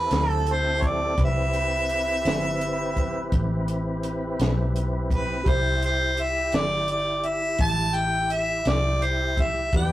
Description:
slow blues; 56 BPM (dotted quarters); 12/8; straight; A4 = 440 Hz
warm harmonica; melody; 0.0-9.9 s; B4 to A5; -24 LUFS; equal
tonewheel organ; sustained chords; 0.0-9.9 s; C4 to D5; -31 LUFS; equal; slow rotary speaker, overdrive, chorus vibrato
vintage muted fingered electric bass; bass; 0.0-9.9 s; G1 to E2; -27 LUFS; equal
compact cocktail drum kit; drums; 0.1-9.9 s; hi-hat, kick drum, snare drum; -27 LUFS; equal
dark baby grand piano; accompaniment; 5.4-9.9 s; E4 to B5; -32 LUFS; right 2 dB
moderate studio reverb, RT60 0.6 s; rough rehearsal-room recording, tube saturation; -22 LUFS; side -15 dB against mid
0.0-9.9 A section
0.0 Am7
0.12 | 1.18 2.25 3.32 4.39 | 5.46 6.53 7.60 8.66 | 9.73

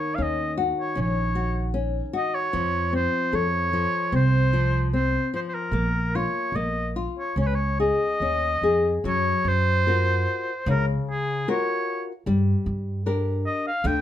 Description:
fado-style ballad; 76 BPM; 4/4; rubato; A4 = 439 Hz
clear oboe; melody; 0.0-14.0 s; Ab4 to G5; -26 LUFS; equal
nylon-string guitar; accompaniment; 0.0-14.0 s; Db3 to Bb4; -26 LUFS; left 4 dB
upright bass; bass; 0.2-14.0 s; Bb1 to G2; -25 LUFS; right 1 dB
moderate studio ambience, RT60 0.5 s; -22 LUFS; side -11 dB against mid
0.0-9.0 A section; 9.0-14.0 B section
0.0 Ebm7; 2.6 F; 5.7 Bb5; 7.3 Db; 9.0 Gbmaj7; 12.3 Gm
0.19 0.98 1.76 | 2.55 3.34 4.12 4.91 | 5.71 6.53 7.34 8.19 | 9.03 9.85 10.66 11.47 | 12.27 13.05 13.84

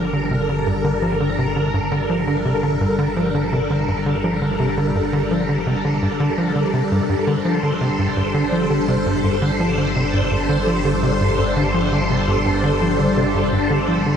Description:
ambient, sequencer-driven space music; 84 BPM; 4/4; straight; G minor; A4 = 438 Hz
phased string machine; sustained chords; 0.0-14.2 s; G3 to C5; -20 LUFS; equal; ensemble chorus, phaser
tight sequencer bass; riff; 0.0-14.2 s; G2 to F3; -20 LUFS; equal; ping-pong delay
analog drone; bass; 0.0-14.2 s; G1; -28 LUFS; equal; chorus
wet huge ambient reverb, RT60 8.5 s; in a vast, echoing space; -17 LUFS; side -8 dB against mid
0.0-14.2 A section
0.0 Gm7
0.31 | 1.03 1.74 2.46 3.17 | 3.88 4.60 5.31 6.03 | 6.74 7.46 8.17 8.88 | 9.60 10.31 11.03 11.74 | 12.46 13.17 13.88

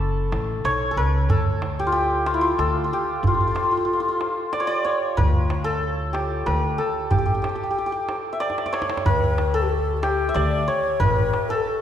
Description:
Persian modal ensemble; 93 BPM; 3/4; straight; A4 = 440 Hz
santur; melody; 0.0-11.8 s; E4 to C#6; -22 LUFS; left 1 dB
upright bass; bass; 0.0-11.3 s; F#1 to D2; -25 LUFS; left 1 dB
tombak; percussion; 0.3-11.7 s; -26 LUFS; right 2 dB
breathy mellow low ney; second line; 9.1-11.8 s; G4 to D5; -25 LUFS; left 4 dB
wet scoring stage reverb, RT60 1.5 s; recorded in a church or concert hall; -20 LUFS; side -10 dB against mid
0.0-1.3 A section; 1.3-11.8 B section
drum fill 8.4-9.1
0.01 0.65 | 1.30 1.94 2.59 | 3.24 3.88 4.53 | 5.18 5.83 6.47 | 7.12 7.77 8.42 | 9.06 9.71 10.36 | 11.01 11.66

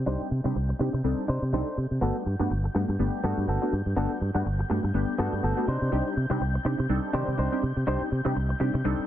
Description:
house; 123 BPM; 4/4; swing 56% on 16ths; A4 = 440 Hz
dark studio string section; sustained chords; 0.0-9.1 s; G6; -41 LUFS; left 4 dB; low-pass filter
modern bright fingered electric bass; bass; 0.0-9.0 s; G1 to C3; -27 LUFS; equal; low-pass filter
funky polysynth comp; accompaniment; 0.1-9.1 s; Eb3 to D5; -30 LUFS; equal; chorus, phaser, low-pass filter
direct-recorded clean electric guitar; riff; 0.1-8.8 s; B3 to C5; -32 LUFS; equal; low-pass filter
light reverb, digital ambience; dense, heavily limited modern master; -25 LUFS; side -11 dB against mid
0.0-9.1 A section
filter sweep 0.0-9.1
0.0 Cmadd9; 2.0 Gmaj9; 5.7 Cmadd9
| 0.07 0.56 1.04 1.53 | 2.02 2.51 3.00 3.48 | 3.97 4.46 4.95 5.43 | 5.92 6.41 6.90 7.39 | 7.87 8.36 8.85

